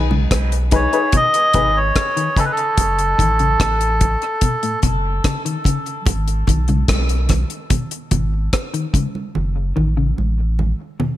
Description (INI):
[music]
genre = dub reggae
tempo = 73 BPM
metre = 4/4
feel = straight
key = G# phrygian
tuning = A4 = 440 Hz
[part]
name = warm upright piano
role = stabs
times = 0.0-2.8 s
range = D#4 to B4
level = -24 LUFS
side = left 6 dB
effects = high-pass filter, dub echo
[part]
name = warm sub bass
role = bass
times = 0.0-10.7 s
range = F#1 to B1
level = -19 LUFS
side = equal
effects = none
[part]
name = mellow electric guitar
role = arpeggios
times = 0.1-11.1 s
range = A2 to D#3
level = -25 LUFS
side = left 4 dB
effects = none
[part]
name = congas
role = percussion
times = 0.1-11.2 s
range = none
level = -27 LUFS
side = right 5 dB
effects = high-pass filter on perc
[part]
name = deep reggae drum kit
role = drums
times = 0.3-9.1 s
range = hi-hat, kick drum, rim click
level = -19 LUFS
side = equal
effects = none
[part]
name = melodica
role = melody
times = 0.8-4.8 s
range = A4 to D#5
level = -19 LUFS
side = equal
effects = dub echo
[sound]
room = light reverb, studio reverb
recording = none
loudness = -15 LUFS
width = side -14 dB against mid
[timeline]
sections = 0.0-11.2 A section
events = filter sweep 0.0-6.1; break 2.8-11.2; part muted 9.4-11.2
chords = 0.0 G#m; 2.8 F#m; 6.1 G#m; 9.4 F#m